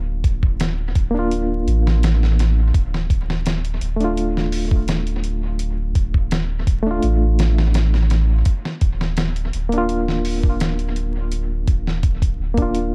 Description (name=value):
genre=trip hop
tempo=84 BPM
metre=4/4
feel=straight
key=unclear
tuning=A4 = 440 Hz
part: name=barky reed electric piano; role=accompaniment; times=0.0-12.9 s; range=A3 to F4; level=-26 LUFS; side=equal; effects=overdrive, fast tremolo, harmonic tremolo, tape echo
part: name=warm sub bass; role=bass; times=0.0-12.9 s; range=D1 to A1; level=-22 LUFS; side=equal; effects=none
part: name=dusty soul sampler-style drum kit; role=drums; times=0.2-12.9 s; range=hi-hat, kick drum, snare drum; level=-23 LUFS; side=equal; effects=dub echo
room=little or no reverb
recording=echo-heavy mix, vinyl crackle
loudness=-20 LUFS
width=mono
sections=0.0-12.9 A section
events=none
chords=0.0 Bb/D; 2.8 Dm; 8.5 Bb/D